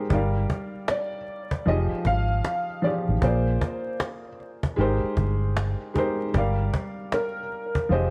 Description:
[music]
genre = lo-fi hip hop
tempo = 77 BPM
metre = 4/4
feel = swing 65% on 16ths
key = unclear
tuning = A4 = 440 Hz
[part]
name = felt-muted upright piano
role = accompaniment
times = 0.0-8.1 s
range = F3 to F5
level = -31 LUFS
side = equal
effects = low-pass filter
[part]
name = vintage muted fingered electric bass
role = bass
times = 0.1-8.1 s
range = F1 to Bb1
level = -26 LUFS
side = equal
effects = none
[part]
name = cajon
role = drums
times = 0.1-8.1 s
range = none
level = -31 LUFS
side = equal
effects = none
[part]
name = dark upright piano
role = melody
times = 0.9-8.1 s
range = Bb4 to F5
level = -31 LUFS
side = equal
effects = low-pass filter, tape echo
[sound]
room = light reverb, studio reverb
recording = vinyl crackle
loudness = -26 LUFS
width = mono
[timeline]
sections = 0.0-8.1 A section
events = none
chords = 0.1 Gm7; 1.7 Fm7; 3.2 Bb7; 4.8 Abmaj7; 6.3 Gm7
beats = | 0.10 0.88 1.66 2.44 | 3.22 4.00 4.78 5.56 | 6.34 7.12 7.89

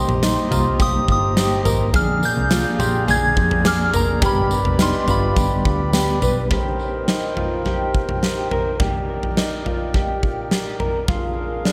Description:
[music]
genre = dream pop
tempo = 105 BPM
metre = 4/4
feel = straight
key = C minor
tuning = A4 = 440 Hz
[part]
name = soft synth bell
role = melody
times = 0.0-6.2 s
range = Bb5 to Ab6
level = -25 LUFS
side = equal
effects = chorus, tape echo
[part]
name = mellow electric guitar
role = accompaniment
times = 0.0-6.5 s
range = G2 to Ab4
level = -28 LUFS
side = equal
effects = tremolo, subtle chorus, tape echo
[part]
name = mellow accordion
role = sustained chords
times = 0.0-11.7 s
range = D4 to B5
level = -29 LUFS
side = equal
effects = none
[part]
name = mellow electric guitar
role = arpeggios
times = 0.0-11.7 s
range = D4 to B4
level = -28 LUFS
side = equal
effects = analog chorus, tape echo
[part]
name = vintage muted picked electric bass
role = bass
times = 0.0-6.5 s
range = F1 to F2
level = -25 LUFS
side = equal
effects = none
[part]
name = huge arena drum kit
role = drums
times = 0.1-11.7 s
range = kick drum, snare drum, tambourine, toms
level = -24 LUFS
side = equal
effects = tape echo
[part]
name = celesta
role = texture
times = 0.5-6.1 s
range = Bb5 to F6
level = -39 LUFS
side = equal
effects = none
[sound]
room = moderate spring reverb, RT60 2.4 s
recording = echo-heavy mix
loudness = -19 LUFS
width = mono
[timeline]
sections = 0.0-6.5 A section; 6.5-11.7 B section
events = none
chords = 0.0 Cm7; 1.9 Bb7; 4.2 G; 6.5 Cm7; 11.1 Bb7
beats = 0.23 0.80 1.37 | 1.94 2.51 3.08 3.65 | 4.23 4.80 5.37 5.94 | 6.51 7.08 7.66 8.23 | 8.80 9.37 9.94 10.51 | 11.08 11.65

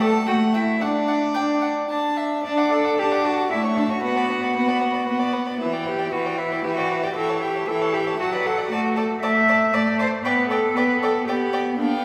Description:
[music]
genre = quick classical-period movement for string quartet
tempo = 115 BPM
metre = 3/4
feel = rubato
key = D major, G major from 8.7 s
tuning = A4 = 441 Hz
[part]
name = warm violin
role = melody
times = 0.0-12.0 s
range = D5 to D6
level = -34 LUFS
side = equal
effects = none
[part]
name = warm violin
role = second line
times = 0.0-12.0 s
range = B4 to A5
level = -32 LUFS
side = equal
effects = none
[part]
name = rich viola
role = accompaniment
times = 0.0-12.0 s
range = E3 to D4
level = -26 LUFS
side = equal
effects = none
[part]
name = rich cello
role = bass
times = 0.0-12.0 s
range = D4 to E5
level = -25 LUFS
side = equal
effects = none
[sound]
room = wet church reverb, RT60 2.7 s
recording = recorded in a church or concert hall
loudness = -22 LUFS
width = mono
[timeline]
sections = 0.0-2.5 A section; 2.5-12.0 B section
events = none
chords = 0.3 A5; 0.8 N.C.; 2.5 D; 3.5 A; 4.0 Bm; 5.6 Em7; 7.2 A7/E; 8.2 D/F#; 8.7 D/A; 10.3 G/B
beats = 0.28 | 0.82 1.36 1.91 | 2.46 2.99 3.52 | 4.04 4.56 5.08 | 5.60 6.13 6.64 | 7.16 7.68 8.20 | 8.72 9.23 9.74 | 10.25 10.77 11.28 | 11.80

